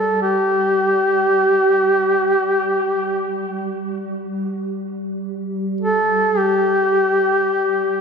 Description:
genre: caucasian folk, Caucasian lament.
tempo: free time.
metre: none.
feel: none.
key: unclear.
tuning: A4 = 436 Hz.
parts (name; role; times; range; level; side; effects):
warm duduk; melody; 0.0-8.0 s; G4 to A4; -16 LUFS; equal; tape echo.
shimmering ambient pad; drone; 0.0-8.0 s; G3; -26 LUFS; right 1 dB; chorus, built-in reverb.
room: wet lush hall reverb, RT60 1.6 s, small room ambience.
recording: dreamy mix soaked in reverb.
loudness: -16 LUFS.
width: side -6 dB against mid.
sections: 0.0-8.0 A section.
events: none.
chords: none.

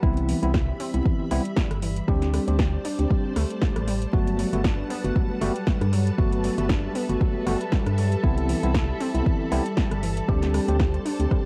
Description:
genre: deep house.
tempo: 117 BPM.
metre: 4/4.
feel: swing 55% on 16ths.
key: G major.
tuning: A4 = 440 Hz.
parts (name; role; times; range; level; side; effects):
soft string machine; sustained chords; 0.0-11.5 s; G3 to B5; -37 LUFS; equal; ensemble chorus, sidechain pumping.
warbly dusty pluck; arpeggios; 0.0-11.4 s; E3 to G4; -34 LUFS; equal; subtle chorus, sidechain pumping, analog delay.
mellow tine electric piano; stabs; 0.0-11.5 s; A3 to G4; -31 LUFS; equal; overdrive, sidechain pumping, tape echo.
organ-like FM bass; bass; 0.0-11.3 s; G1 to G2; -28 LUFS; equal; sidechain pumping.
electronic kick drum; drums; 0.0-11.4 s; none; -26 LUFS; equal; overdrive, cassette tape.
deep house drum kit; drums; 0.2-11.4 s; hi-hat, rim click, snare drum; -34 LUFS; equal; overdrive, cassette tape.
muted studio violin section; texture; 4.1-11.5 s; A4 to A5; -38 LUFS; equal; sidechain pumping.
room: light reverb.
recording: home recording on cassette, vinyl crackle.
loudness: -24 LUFS.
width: mono.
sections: 0.0-11.5 A section.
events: none.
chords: 0.0 Cmaj7; 2.1 D7sus4; 4.1 Gmaj9; 8.2 Cmaj7; 10.3 D7sus4.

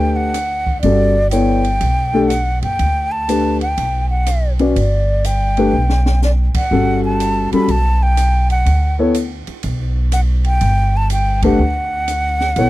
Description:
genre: modal jazz.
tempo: 123 BPM.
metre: 4/4.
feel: swing 67% on 8ths.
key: G lydian.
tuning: A4 = 441 Hz.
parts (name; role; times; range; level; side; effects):
breathy mellow silver concert flute; melody; 0.0-12.7 s; D5 to B5; -19 LUFS; equal; tape echo.
dark concert grand piano; accompaniment; 0.0-12.7 s; G3 to D5; -16 LUFS; left 2 dB; none.
upright bass; bass; 0.0-12.7 s; F#1 to D2; -16 LUFS; equal; none.
open jazz drum kit; drums; 0.3-12.7 s; hi-hat, kick drum, ride cymbal, rim click, snare drum; -28 LUFS; right 1 dB; none.
room: little or no reverb.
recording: dry, close 1970s-style studio recording.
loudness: -13 LUFS.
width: side -16 dB against mid.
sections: 0.0-12.7 A section.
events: drum fill 5.7-6.2; band accent 6.5, 11.3.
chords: 0.0 Gmaj9.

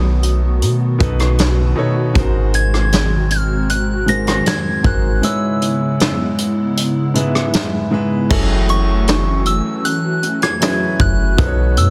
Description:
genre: contemporary R&B.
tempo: 78 BPM.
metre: 4/4.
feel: straight.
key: F# minor.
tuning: A4 = 440 Hz.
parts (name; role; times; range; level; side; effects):
soft synth bell; melody; 0.0-11.9 s; C#6 to A#6; -25 LUFS; equal; chorus, tape echo.
clear concert grand piano; accompaniment; 0.0-11.9 s; G#2 to E5; -23 LUFS; equal; none.
hollow soft pad; sustained chords; 0.0-11.9 s; C#3 to F#4; -25 LUFS; equal; ensemble chorus.
warm 808-style bass; bass; 0.0-11.9 s; F#1 to B2; -19 LUFS; equal; none.
soft brush drum kit; drums; 0.2-11.9 s; crash cymbal, hi-hat, kick drum, rim click, snare drum; -21 LUFS; equal; none.
room: light reverb, small room ambience.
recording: dense, heavily limited modern master.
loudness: -16 LUFS.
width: mono.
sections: 0.0-8.3 A section; 8.3-11.9 B section.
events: kick muted 5.2-8.3.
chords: 0.0 B7; 2.2 G#7; 5.2 C#m7/G#; 8.3 F#m7; 11.4 B7.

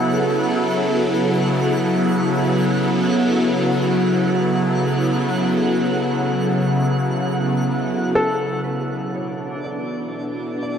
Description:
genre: ambient.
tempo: 60 BPM.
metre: 4/4.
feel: straight.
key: B minor.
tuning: A4 = 435 Hz.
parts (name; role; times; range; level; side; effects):
evolving wavetable pad; sustained chords; 0.0-10.8 s; B2 to A4; -18 LUFS; equal; phaser, built-in reverb.
twinkling granular texture; texture; 0.0-10.8 s; D4 to F#5; -30 LUFS; right 2 dB; built-in reverb.
felt-muted upright piano; melody; 8.2-10.8 s; A4 to D5; -24 LUFS; left 1 dB; diffuse ambient delay.
room: wet huge ambient reverb, RT60 7.5 s.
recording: dark, warm production.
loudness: -17 LUFS.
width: side -8 dB against mid.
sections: 0.0-8.7 A section; 8.7-10.8 B section.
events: none.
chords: 0.0 B9sus4; 8.7 Bm.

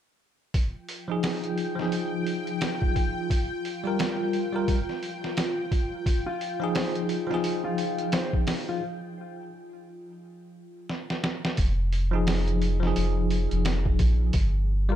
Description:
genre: trip hop.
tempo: 87 BPM.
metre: 4/4.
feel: swing 60% on 16ths.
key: F minor.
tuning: A4 = 440 Hz.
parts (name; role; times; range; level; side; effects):
dark analog pad; sustained chords; 0.5-11.6 s; F4; -35 LUFS; equal; chorus.
trip hop sampler-style drum kit; drums; 0.5-14.5 s; hi-hat, kick drum, snare drum; -28 LUFS; equal; overdrive.
bowed-like drone; texture; 1.3-8.8 s; G5; -38 LUFS; left 3 dB; built-in reverb, phaser.
bell-like tine electric piano; accompaniment; 1.1-15.0 s; F3 to Bb4; -29 LUFS; equal; fast stereo tremolo, harmonic tremolo, low-pass filter, tape echo.
mellow electric guitar; arpeggios; 6.3-8.8 s; F4 to C5; -33 LUFS; left 4 dB; ping-pong delay.
round analog bass; bass; 11.6-15.0 s; F1 to Bb1; -24 LUFS; equal; tube saturation.
room: light reverb.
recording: dark, warm production.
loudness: -24 LUFS.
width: side -11 dB against mid.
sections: 0.5-11.6 A section; 11.6-15.0 B section.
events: filter sweep on tine electric piano 0.5-11.6; break 8.8-11.6; drum fill 10.9-11.6.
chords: 0.5 Fm7; 3.3 Gm7; 6.1 Fm7; 8.8 N.C.; 11.6 Fm7; 14.3 N.C..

